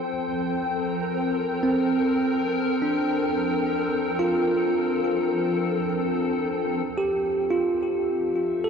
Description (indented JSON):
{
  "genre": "ambient",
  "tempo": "71 BPM",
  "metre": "4/4",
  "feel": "straight",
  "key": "unclear",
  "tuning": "A4 = 440 Hz",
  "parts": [
    { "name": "glassy FM pad", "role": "sustained chords", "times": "0.0-8.7 s", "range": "F3 to G5", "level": "-26 LUFS", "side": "left 2 dB", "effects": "ensemble chorus, built-in reverb" },
    { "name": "bell-like tine electric piano", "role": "arpeggios", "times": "0.0-8.7 s", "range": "C4 to A4", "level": "-24 LUFS", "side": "right 1 dB", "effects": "ping-pong delay" }
  ],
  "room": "wet huge ambient reverb, RT60 8.3 s",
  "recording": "none",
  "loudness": "-22 LUFS",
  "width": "side -6 dB against mid",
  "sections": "0.0-6.9 A section; 6.9-8.7 B section",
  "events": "none",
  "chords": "0.1 Gmadd9/F; 6.9 Fmaj9"
}